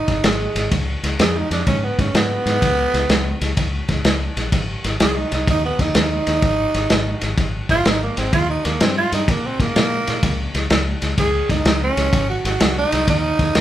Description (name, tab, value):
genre	electric blues shuffle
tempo	126 BPM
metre	4/4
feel	swing 67% on 8ths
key	unclear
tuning	A4 = 440 Hz
part	growling tenor saxophone	second line	0.0-13.6 s	Ab3 to Ab4	-21 LUFS	right 2 dB	none
part	fingered electric bass	bass	0.1-13.6 s	Ab1 to Bb2	-23 LUFS	left 1 dB	none
part	vintage drum kit	drums	0.1-13.6 s	kick drum, ride cymbal, snare drum	-19 LUFS	equal	none
room	light reverb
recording	band playing live in one room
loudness	-16 LUFS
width	side -12 dB against mid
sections	0.0-13.6 A section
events	tenor saxophone solo 0.0-13.6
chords	0.0 Ab5; 0.7 Db7(no3); 4.5 Ab5; 8.3 Eb; 10.2 N.C.; 12.1 Ab